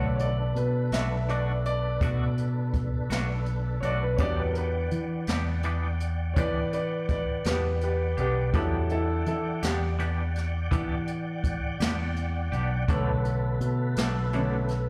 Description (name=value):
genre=slow blues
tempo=55 BPM (dotted quarters)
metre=12/8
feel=straight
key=unclear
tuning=A4 = 440 Hz
part: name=twangy electric guitar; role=accompaniment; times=0.0-14.6 s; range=B2 to G4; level=-39 LUFS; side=equal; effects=tremolo, slapback echo
part: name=warm grand piano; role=accompaniment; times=0.0-14.9 s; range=D3 to E5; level=-33 LUFS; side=equal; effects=slapback echo
part: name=tonewheel organ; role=sustained chords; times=0.0-14.9 s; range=D4 to G5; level=-39 LUFS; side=equal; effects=slow rotary speaker, overdrive, chorus vibrato
part: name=fingered electric bass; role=bass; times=0.0-14.9 s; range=B1 to E3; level=-30 LUFS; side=equal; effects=none
part: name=jazz brush drum kit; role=drums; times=0.2-14.9 s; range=hi-hat, kick drum, snare drum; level=-33 LUFS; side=equal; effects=none
room=light reverb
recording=live gig heard through the venue's PA, club reverb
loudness=-28 LUFS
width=mono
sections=0.0-14.9 A section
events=grand piano solo 0.0-14.9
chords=0.0 Bm7; 4.2 Em7; 12.9 Bm7